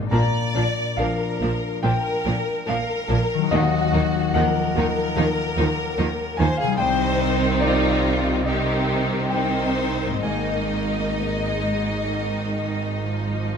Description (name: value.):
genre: cinematic, emotional film score for orchestra.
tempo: 71 BPM.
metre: 4/4.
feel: uneven beats, rubato.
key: Bb mixolydian.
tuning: A4 = 440 Hz.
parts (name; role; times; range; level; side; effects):
clear grand piano; accompaniment; 0.0-13.6 s; C2 to Bb5; -26 LUFS; left 2 dB; none.
concert harp; arpeggios; 0.0-13.6 s; Ab2 to Eb5; -29 LUFS; left 10 dB; none.
rich studio violin section; melody; 0.1-13.6 s; D4 to Eb4; -32 LUFS; left 3 dB; none.
rich symphonic violin section; second line; 0.1-13.5 s; F4 to Eb5; -26 LUFS; left 2 dB; none.
rich symphonic viola section; accompaniment; 0.1-13.6 s; Eb3 to C4; -28 LUFS; right 2 dB; none.
rich studio double bass section; bass; 0.1-13.6 s; Ab1 to Eb2; -27 LUFS; right 3 dB; none.
rich symphonic cello section; bass; 0.1-13.6 s; Ab2 to Eb3; -28 LUFS; right 2 dB; none.
room: moderate scoring stage reverb, RT60 1.6 s.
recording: close, detailed microphones.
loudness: -20 LUFS.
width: side -6 dB against mid.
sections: 0.0-13.6 A section.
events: none.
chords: 0.1 Bb; 3.5 Ebmadd9; 6.8 Cm; 10.2 Absus2.